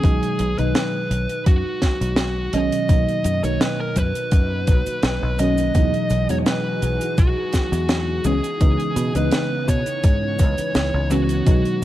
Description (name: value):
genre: vaporwave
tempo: 84 BPM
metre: 4/4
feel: straight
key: unclear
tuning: A4 = 440 Hz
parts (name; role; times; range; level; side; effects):
- fuzz lead guitar; melody; 0.0-11.8 s; F#4 to D#5; -25 LUFS; right 1 dB; distortion, tape echo
- mellow FM electric piano; accompaniment; 0.0-11.8 s; B2 to D#4; -24 LUFS; equal; wide subtle chorus
- fingered electric bass; bass; 0.0-11.8 s; B1 to B2; -23 LUFS; equal; tube saturation
- electronic kick drum; drums; 0.0-11.6 s; none; -17 LUFS; equal; overdrive
- tight funk drum kit; drums; 0.0-11.8 s; cabasa, hi-hat, snare drum; -25 LUFS; right 1 dB; none
- soft string machine; sustained chords; 3.8-11.8 s; B2 to G#4; -32 LUFS; equal; phaser, ensemble chorus
room: light reverb, small room ambience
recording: none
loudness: -18 LUFS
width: side -14 dB against mid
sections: 0.0-11.8 A section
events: none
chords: 0.0 G#m7/B; 2.9 Bmaj7; 5.8 Emaj9; 8.3 C#m9